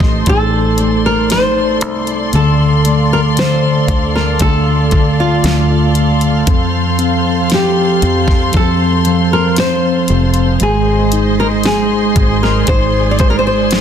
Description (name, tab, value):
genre	pop ballad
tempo	58 BPM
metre	4/4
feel	straight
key	unclear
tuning	A4 = 440 Hz
part	nylon-string guitar	melody	0.0-13.8 s	F4 to D5	-17 LUFS	left 1 dB	none
part	mellow tine electric piano	accompaniment	0.0-13.8 s	D3 to Eb4	-16 LUFS	equal	medium stereo tremolo
part	dark studio string section	sustained chords	0.0-13.8 s	Ab4 to C6	-19 LUFS	left 1 dB	none
part	fingered electric bass	bass	0.0-13.8 s	F1 to F2	-17 LUFS	equal	none
part	smooth R&B drum kit	drums	0.0-13.8 s	hi-hat, kick drum, snare drum	-16 LUFS	equal	none
room	light reverb, digital ambience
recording	dense, heavily limited modern master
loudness	-10 LUFS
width	side -8 dB against mid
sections	0.0-13.8 A section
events	none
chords	0.0 Adim; 2.3 Dm7; 6.5 F; 10.6 Ab